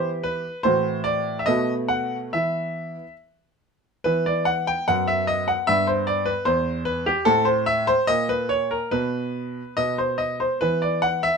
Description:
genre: classical-period piano sonatina.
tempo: 68-76 BPM.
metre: 2/4.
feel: rubato.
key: E minor.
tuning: A4 = 440 Hz.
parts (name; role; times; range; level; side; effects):
clear baby grand piano; solo; 0.0-11.4 s; E2 to G5; -20 LUFS; equal; none.
room: light reverb.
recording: none.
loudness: -20 LUFS.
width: side -5 dB against mid.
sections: 0.0-4.1 A section; 4.1-11.4 B section.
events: none.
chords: 0.0 Em; 0.7 F#m7b5/A; 1.5 B7; 2.3 E5; 4.9 B5/F#; 5.7 Em/G; 7.3 Am; 8.1 N.C.; 10.6 E5.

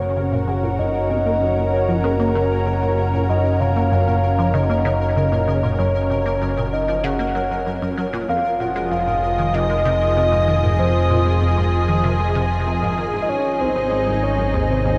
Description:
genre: ambient, sequencer-driven space music.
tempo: 96 BPM.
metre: 4/4.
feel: straight.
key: unclear.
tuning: A4 = 439 Hz.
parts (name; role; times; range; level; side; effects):
soft octave-layered synth lead; melody; 0.0-15.0 s; Bb4 to Gb5; -24 LUFS; equal; chorus, tape echo.
lush unison pad; sustained chords; 0.0-15.0 s; F3 to Eb5; -26 LUFS; equal; chorus.
fat analog bass; bass; 0.0-15.0 s; F1 to Ab1; -24 LUFS; equal; tube saturation.
pulsing gated texture; texture; 0.0-15.0 s; Bb4; -36 LUFS; equal; chorus, built-in reverb.
resonant blip pluck; riff; 0.2-14.9 s; C2 to Bb3; -27 LUFS; equal; phaser, subtle chorus, tape echo.
room: wet huge ambient reverb, RT60 7.4 s.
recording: cassette tape.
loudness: -19 LUFS.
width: mono.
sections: 0.0-15.0 A section.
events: none.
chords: 0.0 Gb; 8.3 Fm7; 13.3 Ab.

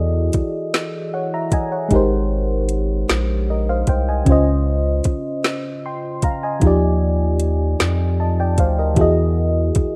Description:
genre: slow six-eight R&B.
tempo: 51 BPM (dotted quarters).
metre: 6/8.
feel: straight.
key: Ab major.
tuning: A4 = 440 Hz.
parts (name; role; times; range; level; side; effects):
mellow FM electric piano; accompaniment; 0.0-10.0 s; Db3 to C6; -22 LUFS; equal; chorus.
round analog bass; bass; 0.0-9.8 s; Ab1 to F2; -21 LUFS; equal; none.
smooth R&B drum kit; drums; 0.3-9.9 s; hi-hat, kick drum, snare drum; -22 LUFS; equal; none.
room: little or no reverb.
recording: rough home demo mix.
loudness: -19 LUFS.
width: mono.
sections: 0.0-10.0 A section.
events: FM electric piano fill 0.7-1.9.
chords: 0.0 Emaj9; 1.9 Abmaj9; 4.3 Dbmaj9; 6.6 Ebmaj9; 9.0 Emaj9.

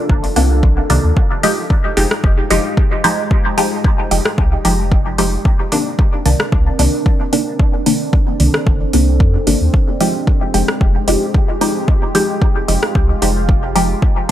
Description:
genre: dub techno.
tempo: 112 BPM.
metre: 4/4.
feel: swing 53% on 16ths.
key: F dorian.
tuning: A4 = 441 Hz.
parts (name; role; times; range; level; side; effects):
deep dark ambient pad; sustained chords; 0.0-14.3 s; Ab3 to D5; -23 LUFS; right 1 dB; chorus, built-in reverb, sidechain pumping.
soft dub sub bass; bass; 0.1-13.9 s; F1 to F2; -16 LUFS; equal; sidechain pumping.
electronic kick drum; drums; 0.1-14.1 s; none; -14 LUFS; equal; overdrive.
deep house drum kit; drums; 0.2-14.3 s; hi-hat, rim click; -21 LUFS; equal; overdrive.
filtered dub chord stab; stabs; 0.4-14.3 s; C3 to G4; -18 LUFS; equal; phaser, sidechain pumping, dub echo.
room: digital ambience.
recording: none.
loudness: -12 LUFS.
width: side -12 dB against mid.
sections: 0.0-1.2 A section; 1.2-14.3 A section.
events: filter sweep on synth stab 1.2-14.3.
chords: 0.0 Cm9; 1.2 Fm9; 5.5 Cm9; 9.7 Fm9.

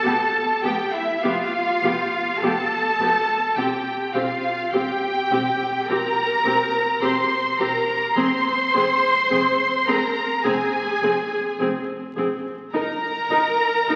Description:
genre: classical, slow romantic movement for string orchestra.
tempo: 52 BPM.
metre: 4/4.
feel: rubato.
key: unclear.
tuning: A4 = 440 Hz.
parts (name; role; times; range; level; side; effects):
dark studio violin section; melody; 0.0-14.0 s; E5 to C6; -27 LUFS; equal; none.
warm symphonic violin section; second line; 0.0-14.0 s; E5 to C6; -28 LUFS; equal; none.
warm studio viola section; accompaniment; 0.0-14.0 s; B3 to Bb4; -27 LUFS; equal; none.
dark symphonic cello section; bass; 0.0-14.0 s; E4 to C5; -27 LUFS; equal; none.
rich chamber double bass section; bass; 0.0-14.0 s; E1 to G1; -40 LUFS; equal; none.
room: wet scoring stage reverb, RT60 1.6 s.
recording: very old 78 rpm record, vinyl crackle.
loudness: -22 LUFS.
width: mono.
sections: 0.0-14.0 A section.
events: none.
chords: 0.0 G7/F; 3.6 C/E; 8.2 Fm; 12.7 Eb.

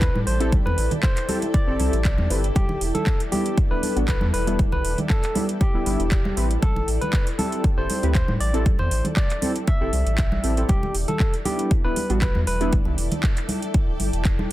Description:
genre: deep house.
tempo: 118 BPM.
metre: 4/4.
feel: swing 53% on 16ths.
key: E minor.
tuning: A4 = 440 Hz.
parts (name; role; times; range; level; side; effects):
barky tine electric piano; melody; 0.0-12.7 s; G4 to E5; -29 LUFS; left 1 dB; none.
warm analog keys; stabs; 0.0-12.8 s; G3 to B4; -28 LUFS; equal; chorus, vintage 12-bit sampler grit, sidechain pumping, analog delay.
round analog bass; bass; 0.0-14.5 s; D1 to A2; -24 LUFS; equal; tube saturation, sidechain pumping.
electronic kick drum; drums; 0.0-14.4 s; none; -21 LUFS; equal; none.
house drum kit; drums; 0.0-14.4 s; handclaps, hi-hat; -31 LUFS; right 2 dB; none.
granular cloud pad; texture; 0.0-14.5 s; E4 to G5; -32 LUFS; left 1 dB; built-in reverb, sidechain pumping.
congas; percussion; 0.2-14.5 s; none; -30 LUFS; right 1 dB; none.
room: little or no reverb.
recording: dense, heavily limited modern master.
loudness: -19 LUFS.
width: side -15 dB against mid.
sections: 0.0-14.5 A section.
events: none.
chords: 0.0 Am7; 2.6 Em7; 6.4 Am7; 10.7 Em7.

